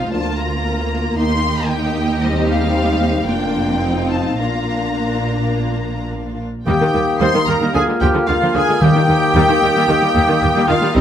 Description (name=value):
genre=quick classical-period movement for symphony orchestra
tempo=112 BPM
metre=4/4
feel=rubato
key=Bb major, Eb major from 6.7 s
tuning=A4 = 440 Hz
part: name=clear symphonic violin section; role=melody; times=0.0-11.0 s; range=Eb5 to C6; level=-24 LUFS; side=left 2 dB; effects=none
part: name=rich chamber violin section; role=second line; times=0.0-11.0 s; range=F4 to C6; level=-25 LUFS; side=left 2 dB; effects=none
part: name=clear studio viola section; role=accompaniment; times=0.0-11.0 s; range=D3 to F4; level=-22 LUFS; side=right 1 dB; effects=none
part: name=clear chamber double bass section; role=bass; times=0.0-11.0 s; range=F1 to Eb2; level=-23 LUFS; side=right 2 dB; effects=none
part: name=warm symphonic cello section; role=bass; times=0.0-11.0 s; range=D2 to Eb3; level=-23 LUFS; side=right 3 dB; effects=none
part: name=dark French horn section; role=sustained chords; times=0.1-11.0 s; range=F3 to F4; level=-23 LUFS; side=left 3 dB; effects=none
part: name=mellow hollow silver concert flute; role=second line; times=6.7-11.0 s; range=Eb6 to F6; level=-25 LUFS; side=left 1 dB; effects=none
part: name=warm clarinet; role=second line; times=6.7-11.0 s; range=Eb4 to C5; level=-24 LUFS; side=left 3 dB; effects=none
part: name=warm oboe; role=second line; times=6.7-11.0 s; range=Eb4 to C5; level=-24 LUFS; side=right 1 dB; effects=none
part: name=mellow bassoon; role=accompaniment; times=6.7-11.0 s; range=G3 to Bb3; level=-23 LUFS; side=equal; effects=none
part: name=mellow trumpet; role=stabs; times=6.7-11.0 s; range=Eb4 to C5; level=-22 LUFS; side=right 1 dB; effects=none
part: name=timpani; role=percussion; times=6.7-9.6 s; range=Eb3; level=-20 LUFS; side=left 2 dB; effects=none
room=moderate concert hall reverb, RT60 1.7 s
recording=close, detailed microphones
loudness=-14 LUFS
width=side -9 dB against mid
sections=0.0-6.7 A section; 6.7-11.0 B section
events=none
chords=0.1 Bb/D; 1.2 Eb; 2.2 Cm/Eb; 3.3 Bb/F; 3.8 F7; 4.4 Bb; 6.7 Eb; 7.7 Bb7/D; 8.8 Eb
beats=| 0.12 0.65 1.17 1.70 | 2.22 2.75 3.28 3.82 | 4.39 4.97 5.54 6.11 | 6.67 7.21 7.75 8.28 | 8.81 9.35 9.89 10.42 | 10.95